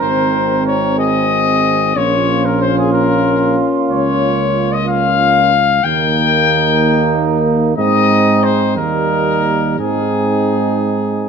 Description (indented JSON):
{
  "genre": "classical, brass quintet",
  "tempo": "62 BPM (dotted quarters)",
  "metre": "6/8",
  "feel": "straight",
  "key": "Ab major from 3.9 s",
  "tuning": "A4 = 441 Hz",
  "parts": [
    { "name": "clear trumpet", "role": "melody", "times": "0.0-11.3 s", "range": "Ab4 to G5", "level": "-16 LUFS", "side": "left 8 dB", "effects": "none" },
    { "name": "clear flugelhorn", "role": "second line", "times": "0.0-11.3 s", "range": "Eb4 to Bb4", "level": "-20 LUFS", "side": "right 10 dB", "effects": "none" },
    { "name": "warm French horn", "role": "accompaniment", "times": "0.0-11.3 s", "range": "Bb3 to Db4", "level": "-19 LUFS", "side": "left 4 dB", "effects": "none" },
    { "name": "warm trombone", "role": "accompaniment", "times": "0.0-11.3 s", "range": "Eb3 to Bb3", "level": "-22 LUFS", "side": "right 7 dB", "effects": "none" },
    { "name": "warm tuba", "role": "bass", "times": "0.0-11.3 s", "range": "Ab1 to Ab2", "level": "-18 LUFS", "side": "right 5 dB", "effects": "none" }
  ],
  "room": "light reverb",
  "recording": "close, detailed microphones",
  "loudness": "-12 LUFS",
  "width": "side -6 dB against mid",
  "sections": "0.0-11.3 A section",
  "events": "none",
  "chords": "0.0 Ab; 2.0 Bbm; 3.9 Bbm/Db; 5.8 Eb; 7.8 Ab; 8.8 Eb; 9.8 Ab",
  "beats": "| 0.02 0.99 | 1.96 2.92 | 3.89 4.87 | 5.83 6.80 | 7.77 8.77 | 9.78 10.81"
}